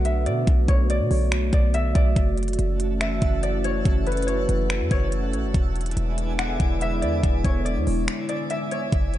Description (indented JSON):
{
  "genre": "hip hop, atmospheric cloud-rap",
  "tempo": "142 BPM",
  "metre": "4/4",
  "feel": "half-time",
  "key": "unclear",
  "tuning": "A4 = 440 Hz",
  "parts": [
    { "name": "concert harp", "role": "melody", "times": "0.0-9.2 s", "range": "B4 to F#5", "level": "-29 LUFS", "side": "left 1 dB", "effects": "analog delay" },
    { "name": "dark analog pad", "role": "sustained chords", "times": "0.0-9.2 s", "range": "D3 to F#4", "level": "-28 LUFS", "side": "equal", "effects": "chorus, sidechain pumping" },
    { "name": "warm 808-style bass", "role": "bass", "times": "0.0-9.2 s", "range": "E1 to B2", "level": "-24 LUFS", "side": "equal", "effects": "none" },
    { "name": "trap drum kit", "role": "drums", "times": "0.1-9.2 s", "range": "finger snaps, hi-hat, kick drum", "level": "-24 LUFS", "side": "equal", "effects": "none" },
    { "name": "twinkling granular texture", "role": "texture", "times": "2.7-9.2 s", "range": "E4 to A5", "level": "-36 LUFS", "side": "equal", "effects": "built-in reverb" }
  ],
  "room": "light reverb",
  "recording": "nothing above 10.8 kHz",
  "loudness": "-20 LUFS",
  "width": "side -13 dB against mid",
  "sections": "0.0-9.2 A section",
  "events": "break 8.1-8.9",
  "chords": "0.0 Bm7; 2.2 F#m7; 5.5 E7",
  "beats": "0.05 | 0.47 0.90 1.32 1.74 | 2.16 2.59 3.01 3.43 | 3.85 4.28 4.70 5.12 | 5.54 5.97 6.39 6.81 | 7.23 7.66 8.08 8.50 | 8.92"
}